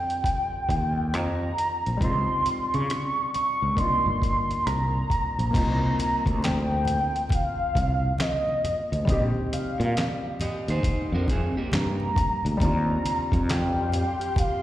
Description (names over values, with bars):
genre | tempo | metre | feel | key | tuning
R&B, neo-soul | 68 BPM | 4/4 | swing 63% on 16ths | C minor | A4 = 440 Hz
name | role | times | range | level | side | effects
warm velvety synth lead | melody | 0.0-14.6 s | Eb5 to Db6 | -27 LUFS | equal | chorus, plate reverb, slapback echo, tape echo
warm grand piano | accompaniment | 0.0-14.6 s | D3 to G4 | -33 LUFS | left 2 dB | plate reverb, slapback echo
dusty soul sampler-style drum kit | drums | 0.1-14.6 s | crash cymbal, handclaps, hi-hat, kick drum, rim click, snare drum | -27 LUFS | equal | none
fretless electric bass | bass | 0.7-14.0 s | G1 to Db3 | -25 LUFS | equal | none
congas | percussion | 5.5-14.6 s | none | -34 LUFS | equal | none
electric guitar at the edge of break-up | second line | 10.4-12.6 s | Bb3 to Eb5 | -31 LUFS | right 2 dB | spring reverb, plate reverb, slapback echo
soft string machine | sustained chords | 13.1-14.6 s | G4 to C6 | -35 LUFS | right 1 dB | ensemble chorus
room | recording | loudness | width
light reverb | live gig heard through the venue's PA, recital hall reverb | -23 LUFS | side -13 dB against mid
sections
0.0-5.5 A section; 5.5-14.6 B section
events
none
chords
0.0 Eb69; 2.0 Dbmaj9; 3.8 Cm9; 9.1 Bbsus24; 12.6 Eb69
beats
0.25 1.13 | 2.01 2.90 3.78 4.66 | 5.54 6.42 7.31 8.19 | 9.07 9.95 10.84 11.72 | 12.60 13.48 14.37